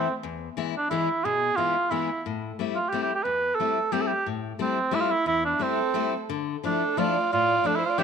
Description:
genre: musette waltz.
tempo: 178 BPM.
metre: 3/4.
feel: straight.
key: A minor.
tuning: A4 = 438 Hz.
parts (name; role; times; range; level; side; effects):
mellow cor anglais; melody; 0.0-8.0 s; C4 to B4; -25 LUFS; right 3 dB; none.
picked steel-string acoustic guitar; accompaniment; 0.0-8.0 s; E2 to E4; -29 LUFS; left 10 dB; none.
warm violin; second line; 5.6-8.0 s; A4 to E5; -30 LUFS; right 9 dB; none.
room: moderate echo chamber reverb, RT60 1.5 s, studio ambience.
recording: 1960s-style stereo with parts hard left and right.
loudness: -23 LUFS.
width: side -6 dB against mid.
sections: 0.0-8.0 A section.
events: none.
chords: 0.2 E; 2.2 Am7; 6.3 Dmadd9.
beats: | 0.23 0.56 0.90 | 1.23 1.57 1.91 | 2.25 2.59 2.93 | 3.27 3.60 3.94 | 4.28 4.61 4.95 | 5.29 5.62 5.96 | 6.30 6.64 6.98 | 7.32 7.65 7.99.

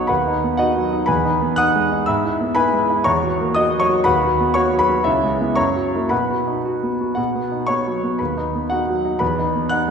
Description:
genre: classical, virtuoso piano study.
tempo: 120 BPM.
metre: 2/4.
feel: rubato.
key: B major.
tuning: A4 = 437 Hz.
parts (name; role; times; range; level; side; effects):
clear concert grand piano; solo; 0.0-9.9 s; B1 to F#6; -16 LUFS; equal; none.
room: wet concert hall reverb, RT60 2.3 s.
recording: recorded in a church or concert hall.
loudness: -16 LUFS.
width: side -6 dB against mid.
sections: 0.0-7.2 A section; 7.2-9.9 A section.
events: none.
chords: 0.1 B/D#; 1.1 Emaj7; 2.1 E/G#; 3.1 F#7/E; 4.1 B/D#; 5.1 C#m7; 5.6 F#7; 6.1 B; 8.2 B/D#; 9.2 Emaj7(no3).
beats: | 0.10 0.59 | 1.09 1.59 | 2.08 2.57 | 3.06 3.56 | 4.06 4.56 | 5.06 5.58 | 6.11 6.65 | 7.18 7.69 | 8.20 8.71 | 9.21 9.71.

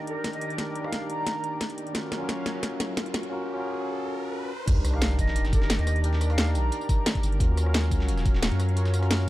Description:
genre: liquid drum and bass.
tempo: 176 BPM.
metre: 4/4.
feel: straight.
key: C minor.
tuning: A4 = 441 Hz.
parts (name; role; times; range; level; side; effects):
tine electric piano; accompaniment; 0.0-9.3 s; Db4 to Bb4; -33 LUFS; equal; digital delay.
lush unison pad; sustained chords; 0.0-9.3 s; Eb3 to F5; -37 LUFS; left 1 dB; chorus, sidechain pumping.
saturated sub bass; bass; 0.0-9.3 s; Eb1 to Gb2; -24 LUFS; equal; high-pass filter.
riser and sub drop; sound effects; 2.8-6.0 s; none; -36 LUFS; equal; none.
silver concert flute; melody; 0.1-1.6, 4.9-7.0 s; Bb4 to Bb5; -34 LUFS; equal; tape echo.
drum and bass drum kit; drums; 0.1-9.3 s; crash cymbal, hi-hat, rim click, snare drum, tambourine; -30 LUFS; equal; none.
electronic kick drum; drums; 0.2-8.3 s; none; -25 LUFS; equal; high-pass filter on kick, high-pass filter on room.
dusty soul sampler-style drum kit; drums; 4.7-9.2 s; hi-hat, snare drum; -36 LUFS; equal; high-pass filter on hats, high-pass filter on snare, high-pass filter on room.
room: light reverb, digital ambience.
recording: dark, warm production.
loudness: -24 LUFS.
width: side -16 dB against mid.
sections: 0.0-4.7 A section; 4.7-9.3 B section.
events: build-up 0.0-4.7; drum fill 0.0-3.3; riser 2.8-4.7; drop 4.7-9.3; impact 4.7-6.0.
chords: 0.0 Cm7 (rootless); 1.9 Ebm7; 4.5 N.C.; 4.7 Cm7; 7.4 Ebm7.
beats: 0.24 | 0.58 0.93 1.27 1.61 | 1.95 2.29 2.63 2.97 | 3.31 3.65 3.99 4.33 | 4.67 5.02 5.36 5.70 | 6.04 6.38 6.72 7.06 | 7.40 7.74 8.09 8.43 | 8.77 9.11.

